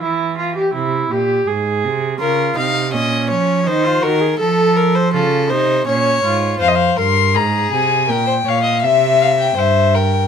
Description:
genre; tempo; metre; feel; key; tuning
classical, baroque-style fugue for string quartet; 82 BPM; 3/4; straight; Bb minor; A4 = 440 Hz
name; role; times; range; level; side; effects
rich viola; accompaniment; 0.0-6.6 s; Db4 to A4; -19 LUFS; right 2 dB; none
rich cello; bass; 0.0-10.3 s; F2 to F3; -19 LUFS; right 5 dB; none
warm violin; second line; 2.2-10.3 s; Ab4 to F5; -17 LUFS; left 3 dB; none
dark violin; melody; 6.6-10.3 s; Eb5 to C6; -16 LUFS; left 6 dB; none
room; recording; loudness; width
light reverb; minimal, uncompressed stereo recording; -13 LUFS; side -7 dB against mid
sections
0.0-10.3 A section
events
none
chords
0.0 C/E; 1.5 Ab; 2.2 Bbm; 3.7 Cdim/Eb; 4.4 F; 5.9 Bbm; 6.6 Fm; 8.1 Gdim/Bb; 8.8 C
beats
| 0.02 0.75 1.48 | 2.21 2.94 3.67 | 4.41 5.14 5.88 | 6.61 7.35 8.09 | 8.83 9.57

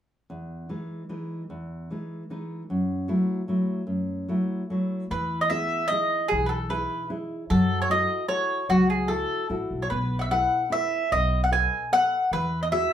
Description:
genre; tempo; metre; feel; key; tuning
italian folk, Italian serenade; 150 BPM; 3/4; straight; E major; A4 = 440 Hz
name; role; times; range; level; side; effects
nylon-string guitar; accompaniment; 0.3-12.9 s; E2 to D#5; -28 LUFS; equal; none
mandolin; melody; 5.1-12.9 s; F#4 to G#5; -24 LUFS; equal; none
upright bass; bass; 5.1-12.8 s; A1 to F#2; -30 LUFS; equal; none
room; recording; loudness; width
wet small room reverb, RT60 0.6 s; band playing live in one room; -23 LUFS; side -10 dB against mid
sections
0.3-5.1 A section; 5.1-12.9 B section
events
none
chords
0.3 Emaj7; 2.7 F#m7; 5.1 Emaj7; 7.5 F#m7; 9.9 B7sus4; 11.1 B7; 12.3 Eadd9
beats
| 0.29 0.70 1.11 | 1.51 1.91 2.30 | 2.70 3.09 3.49 | 3.90 4.30 4.71 | 5.12 5.52 5.92 | 6.32 6.72 7.12 | 7.51 7.91 8.30 | 8.70 9.10 9.51 | 9.91 10.32 10.72 | 11.12 11.53 11.93 | 12.32 12.72

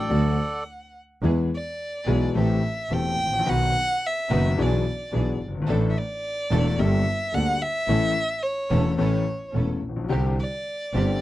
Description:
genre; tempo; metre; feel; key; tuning
tango; 108 BPM; 4/4; rubato; unclear; A4 = 440 Hz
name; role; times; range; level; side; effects
bandoneon; melody; 0.0-0.6 s; A4 to D5; -28 LUFS; right 1 dB; none
warm violin; second line; 0.0-11.2 s; C#5 to G5; -28 LUFS; equal; none
clear grand piano; accompaniment; 0.0-11.2 s; E1 to A4; -25 LUFS; left 3 dB; none
clear studio string section; stabs; 0.0-11.2 s; Bb3 to B4; -35 LUFS; right 5 dB; none
clear double bass; bass; 0.0-11.2 s; E1 to E2; -25 LUFS; right 2 dB; none
room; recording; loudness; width
light reverb; dry, close 1970s-style studio recording; -22 LUFS; side -15 dB against mid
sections
0.0-1.2 A section; 1.2-11.2 B section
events
violin solo 1.2-11.2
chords
0.0 D; 1.2 E; 2.4 Am7; 3.5 B; 4.6 E7/B; 5.7 Asus4; 6.8 Gmadd9; 7.9 A; 10.1 Csus2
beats
0.10 0.67 | 1.24 1.80 2.36 2.92 | 3.48 4.04 4.59 5.14 | 5.69 6.24 6.79 7.34 | 7.89 8.44 9.00 9.55 | 10.12 10.67

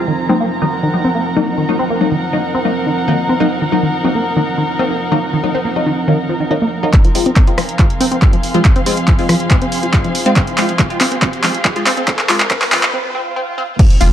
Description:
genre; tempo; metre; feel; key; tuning
driving peak-time techno; 140 BPM; 4/4; straight; F phrygian; A4 = 436 Hz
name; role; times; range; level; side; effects
filtered dub chord stab; stabs; 0.0-14.1 s; Gb3 to F4; -19 LUFS; left 2 dB; phaser, wide subtle chorus, sidechain pumping, tape echo
deep dark ambient pad; drone; 0.0-14.1 s; F3 to C4; -23 LUFS; right 2 dB; chorus, built-in reverb, sidechain pumping
muted chamber string section; texture; 0.0-12.9 s; C4 to C6; -22 LUFS; equal; sidechain pumping
tight sequenced synth; riff; 0.1-14.1 s; Eb3 to F4; -19 LUFS; equal; chorus, sidechain pumping, digital delay
electronic kick drum; drums; 6.9-13.9 s; none; -11 LUFS; equal; none
punchy analog drum machine; drums; 6.9-14.1 s; crash cymbal, handclaps, hi-hat, rim click; -17 LUFS; equal; sidechain pumping on hats, sidechain pumping on cymbals
riser, swell and impact; sound effects; 9.6-14.1 s; none; -26 LUFS; right 1 dB; none
warm sub bass; bass; 14.0-14.1 s; F1; -9 LUFS; equal; overdrive, sidechain pumping, low-pass filter
room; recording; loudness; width
wet stone room reverb, RT60 1.2 s; dark, warm production, high-pass filter; -12 LUFS; side -10 dB against mid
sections
0.0-6.9 A section; 6.9-13.8 B section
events
filter sweep on synth arpeggio sound 0.0-6.9, 6.9-13.8; filter sweep on synth stab 0.0-6.9; build-up 6.9-13.8; drum fill 6.9-12.9; filter sweep 6.9-13.8; riser 9.6-12.9; break 12.9-13.8; swell 12.9-13.8; impact 13.8-14.1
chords
0.1 Ebm; 6.9 Fm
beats
| 0.08 0.51 0.94 1.36 | 1.79 2.22 2.65 3.08 | 3.51 3.94 4.37 4.79 | 5.22 5.65 6.08 6.51 | 6.94 7.37 7.79 8.22 | 8.65 9.08 9.51 9.94 | 10.37 10.79 11.22 11.65 | 12.08 12.51 12.94 13.37 | 13.79

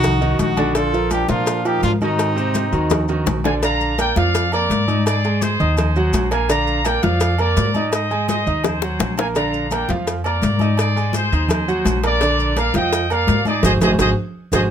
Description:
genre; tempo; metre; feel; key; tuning
latin, salsa; 168 BPM; 4/4; straight; Bb major; A4 = 440 Hz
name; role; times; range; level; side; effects
brilliant horn section; melody; 0.0-3.4 s; C4 to A4; -22 LUFS; left 2 dB; none
bright grand piano; accompaniment; 0.0-14.7 s; C3 to Eb6; -22 LUFS; right 3 dB; none
upright bass; bass; 0.0-14.7 s; Ab1 to Bb2; -21 LUFS; left 1 dB; none
agogo bells and timbales; percussion; 0.0-14.6 s; none; -30 LUFS; right 4 dB; none
congas; percussion; 0.0-14.6 s; none; -25 LUFS; left 3 dB; none
cowbell and bongos; percussion; 0.0-14.6 s; none; -25 LUFS; left 4 dB; none
maracas; percussion; 0.0-14.6 s; none; -33 LUFS; left 4 dB; none
bright trumpet section; melody; 3.5-14.6 s; Ab4 to Bb5; -22 LUFS; equal; none
room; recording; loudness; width
little or no reverb; close, detailed microphones; -16 LUFS; side -9 dB against mid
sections
0.0-3.6 A section; 3.6-14.7 B section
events
drum fill 2.9-3.6, 8.6-9.4, 13.6-14.7; band accent 13.6-14.7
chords
0.0 Ab7 (rootless); 0.8 Bb; 5.1 Ab7; 6.5 Bb; 7.9 Ab7; 9.4 Bb; 10.8 Ab7; 12.2 Bb; 13.6 Ab7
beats
0.03 0.39 | 0.75 1.11 1.47 1.83 | 2.19 2.55 2.91 3.27 | 3.62 3.98 4.34 4.70 | 5.06 5.42 5.78 6.13 | 6.49 6.85 7.21 7.57 | 7.92 8.28 8.64 9.00 | 9.36 9.71 10.07 10.43 | 10.78 11.14 11.50 11.86 | 12.21 12.57 12.93 13.28 | 13.64 13.99 14.35

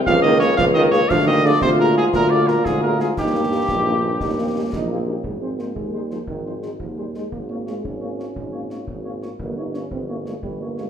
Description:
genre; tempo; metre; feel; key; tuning
military-style march for wind band; 116 BPM (dotted quarters); 6/8; straight; Ab major; A4 = 441 Hz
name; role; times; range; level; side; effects
mellow trombone section; sustained chords; 0.0-5.2 s; Bb3 to F4; -23 LUFS; equal; none
mellow cornet; melody; 0.1-10.8 s; G4 to F5; -22 LUFS; equal; none
mellow euphonium; second line; 0.1-10.9 s; G2 to Eb4; -25 LUFS; right 2 dB; none
clear tuba; bass; 0.1-10.9 s; G1 to Eb2; -23 LUFS; right 1 dB; none
concert snare drum, concert bass drum and clash cymbals; drums; 0.1-10.9 s; none; -32 LUFS; left 2 dB; none
dark French horn section; accompaniment; 0.2-10.8 s; Ab3 to Ab4; -28 LUFS; left 4 dB; none
room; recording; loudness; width
wet recital hall reverb, RT60 1.3 s; minimal, uncompressed stereo recording; -18 LUFS; side -8 dB against mid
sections
0.0-5.2 A section; 5.2-10.9 B section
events
none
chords
0.1 Bbm7/Db; 1.1 Bb7/D; 3.2 Eb; 5.2 Ab; 7.3 Bbm7/Ab; 9.4 Gdim7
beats
| 0.07 0.58 | 1.10 1.62 | 2.14 2.66 | 3.17 3.69 | 4.21 4.73 | 5.25 5.77 | 6.29 6.80 | 7.32 7.84 | 8.36 8.88 | 9.40 9.92 | 10.44

